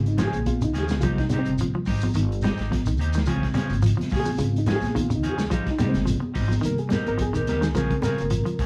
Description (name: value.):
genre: afrobeat.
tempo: 107 BPM.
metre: 4/4.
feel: swing 54% on 16ths.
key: unclear.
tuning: A4 = 440 Hz.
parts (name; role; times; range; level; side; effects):
reed electric piano; accompaniment; 0.0-8.7 s; C3 to Bb4; -29 LUFS; equal; fast tremolo.
semi-hollow electric guitar; arpeggios; 0.0-8.6 s; Db3 to G3; -33 LUFS; equal; none.
upright bass; bass; 0.0-8.7 s; G1 to F2; -29 LUFS; equal; none.
vintage drum kit; drums; 0.1-8.7 s; hi-hat, kick drum, snare drum; -32 LUFS; equal; none.
electric guitar at the edge of break-up; stabs; 0.2-8.7 s; F3 to Ab4; -36 LUFS; equal; none.
congas; percussion; 0.2-8.7 s; none; -34 LUFS; equal; none.
shekere; percussion; 0.2-8.7 s; none; -33 LUFS; equal; none.
room: moderate large studio reverb, RT60 0.9 s.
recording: band playing live in one room.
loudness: -24 LUFS.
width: mono.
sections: 0.0-8.7 A section.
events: reed electric piano solo 0.0-8.7.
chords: 0.0 Abmaj7; 3.3 Bbm9; 5.5 Abmaj7; 7.7 Bbm9.